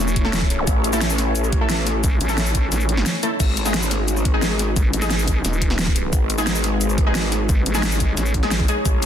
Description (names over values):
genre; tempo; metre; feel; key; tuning
dark technical drum and bass; 176 BPM; 4/4; straight; G# phrygian; A4 = 442 Hz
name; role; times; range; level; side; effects
deep dark ambient pad; sustained chords; 0.0-9.1 s; G#3 to C#5; -27 LUFS; left 2 dB; chorus, built-in reverb, sidechain pumping
vowel-sweep wobble bass; bass; 0.0-8.7 s; D#1 to A1; -22 LUFS; equal; chorus
dubstep drum kit; drums; 0.1-9.1 s; cabasa, crash cymbal, hi-hat, snare drum; -24 LUFS; equal; overdrive
orchestra-hit-like synth stab; stabs; 0.2-8.8 s; G#3 to A4; -27 LUFS; equal; built-in reverb, digital delay
electronic kick drum; drums; 0.2-8.9 s; none; -20 LUFS; equal; overdrive
zap; sound effects; 0.6-0.7 s; none; -28 LUFS; equal; none
growl bass; bass; 0.7-9.1 s; G#1 to A1; -22 LUFS; equal; chorus, overdrive, sidechain pumping
room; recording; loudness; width
light reverb; dense, heavily limited modern master; -17 LUFS; side -9 dB against mid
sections
0.0-9.1 A section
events
kick drops out 2.7-3.4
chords
0.0 A; 3.4 G#m